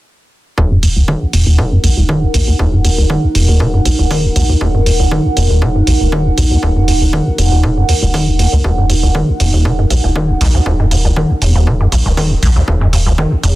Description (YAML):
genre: acid house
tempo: 119 BPM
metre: 4/4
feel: swing 54% on 16ths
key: Eb minor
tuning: A4 = 441 Hz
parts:
  - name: dark analog pad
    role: sustained chords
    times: 1.3-13.6 s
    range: Eb4 to Gb5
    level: -20 LUFS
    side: right 1 dB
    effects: chorus, phaser, sidechain pumping
  - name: deep acid bass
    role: riff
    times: 0.6-13.5 s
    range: Eb1 to Eb3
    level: -12 LUFS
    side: equal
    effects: overdrive, analog chorus, sidechain pumping
  - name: round analog bass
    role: bass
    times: 0.6-13.6 s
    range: Eb1 to Db2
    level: -16 LUFS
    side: equal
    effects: sidechain pumping
  - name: electronic kick drum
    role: drums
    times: 0.6-13.3 s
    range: none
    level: -22 LUFS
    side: equal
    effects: high-pass filter on kick
  - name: electronic hi-hat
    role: drums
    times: 0.8-13.5 s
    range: none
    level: -21 LUFS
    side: right 2 dB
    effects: none
room: little or no reverb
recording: dense, heavily limited modern master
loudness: -10 LUFS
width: side -17 dB against mid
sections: 0.6-13.6 A section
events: filter sweep on acid bass 0.6-13.6; filter sweep on analog synth bass 0.6-13.6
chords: 0.6 Ebm